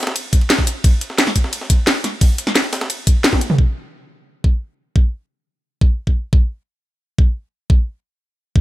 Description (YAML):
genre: drum and bass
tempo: 175 BPM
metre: 4/4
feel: straight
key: none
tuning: none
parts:
  - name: breakbeat sampler-style drum kit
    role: drums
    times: 0.0-3.5 s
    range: hi-hat, ride cymbal, snare drum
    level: -26 LUFS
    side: equal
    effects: high-pass filter on snare, high-pass filter on cymbals, high-pass filter on hats
  - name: drum and bass drum kit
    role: drums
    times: 0.2-3.6 s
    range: hi-hat, ride cymbal, snare drum, toms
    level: -18 LUFS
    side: equal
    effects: low-pass filter on hats, low-pass filter on cymbals, low-pass filter on snare, low-pass filter on toms, low-pass filter on room
  - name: electronic kick drum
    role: drums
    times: 0.3-8.6 s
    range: none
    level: -13 LUFS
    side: equal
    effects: none
room: digital ambience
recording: none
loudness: -15 LUFS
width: side -16 dB against mid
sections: 0.0-3.6 A section; 3.6-8.6 B section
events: drop 0.0-3.6; drum fill 3.2-3.6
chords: none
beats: 0.16 0.50 | 0.84 1.18 1.53 1.87 | 2.21 2.56 2.90 3.24 | 3.58 3.93 4.27 4.61 | 4.96 5.30 5.64 5.98 | 6.33 6.67 7.01 7.36 | 7.70 8.04 8.38